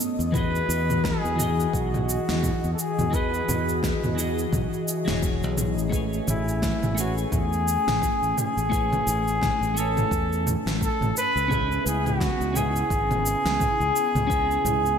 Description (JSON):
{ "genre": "sunset chillout", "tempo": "86 BPM", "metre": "4/4", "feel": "swing 57% on 16ths", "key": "A lydian", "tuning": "A4 = 440 Hz", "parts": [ { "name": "twelve-string electric guitar", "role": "accompaniment", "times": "0.0-15.0 s", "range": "E3 to G#5", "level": "-31 LUFS", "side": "moving between left 5 dB and right 4 dB", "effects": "auto-pan, digital delay" }, { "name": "airy breathy pad", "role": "sustained chords", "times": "0.0-15.0 s", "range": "C#3 to G#5", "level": "-33 LUFS", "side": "left 1 dB", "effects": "chorus" }, { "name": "deep house drum kit", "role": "drums", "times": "0.0-15.0 s", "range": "cabasa, snare drum, toms", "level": "-29 LUFS", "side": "right 1 dB", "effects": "gated reverb" }, { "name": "modern bright fingered electric bass", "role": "bass", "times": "0.2-15.0 s", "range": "E1 to E2", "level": "-28 LUFS", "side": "equal", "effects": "none" }, { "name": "electronic kick drum", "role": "drums", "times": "0.3-14.5 s", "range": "none", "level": "-29 LUFS", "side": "equal", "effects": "none" }, { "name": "mellow flugelhorn", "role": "melody", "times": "0.4-15.0 s", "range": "E4 to B4", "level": "-26 LUFS", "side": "left 1 dB", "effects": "digital delay" } ], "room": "moderate lush hall reverb, RT60 2.6 s", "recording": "bright 1980s-style digital production", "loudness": "-22 LUFS", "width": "side -7 dB against mid", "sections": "0.0-15.0 A section", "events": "none", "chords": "0.3 Emaj9; 5.9 Amaj9; 11.5 C#m9" }